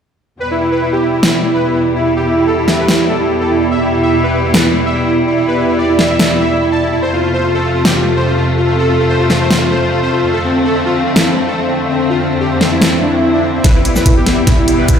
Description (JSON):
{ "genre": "heavy wobble dubstep", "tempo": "145 BPM", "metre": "4/4", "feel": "half-time", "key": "E phrygian", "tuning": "A4 = 440 Hz", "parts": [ { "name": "soft supersaw", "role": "melody", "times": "0.4-15.0 s", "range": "C4 to A5", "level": "-15 LUFS", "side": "right 1 dB", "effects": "tape echo" }, { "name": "warm chamber string section", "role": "sustained chords", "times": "0.4-15.0 s", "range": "E2 to A3", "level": "-17 LUFS", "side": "left 1 dB", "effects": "sidechain pumping" }, { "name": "warbly tape-like pad", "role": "texture", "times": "1.0-15.0 s", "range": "B3 to F5", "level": "-20 LUFS", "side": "right 1 dB", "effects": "chorus, built-in reverb, sidechain pumping" }, { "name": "big-room dance drum kit", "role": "drums", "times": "1.2-15.0 s", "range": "hi-hat, shaker, snare drum", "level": "-14 LUFS", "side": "left 1 dB", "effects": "small room ambience" }, { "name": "swell and riser", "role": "sound effects", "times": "12.9-15.0 s", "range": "none", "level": "-20 LUFS", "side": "equal", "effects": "none" }, { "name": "electronic kick drum", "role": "drums", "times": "13.6-15.0 s", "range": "none", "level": "-11 LUFS", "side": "equal", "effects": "small room ambience" } ], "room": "moderate lush hall reverb, RT60 1.7 s", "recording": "played on a big sound system in a bare room, large studio reverb", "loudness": "-11 LUFS", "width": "side -7 dB against mid", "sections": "0.4-13.6 A section; 13.6-15.0 B section", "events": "swell 12.9-13.6; build-up 13.6-15.0; drum fill 13.6-15.0; riser 13.6-15.0", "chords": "0.4 Em; 7.0 F; 13.6 Em" }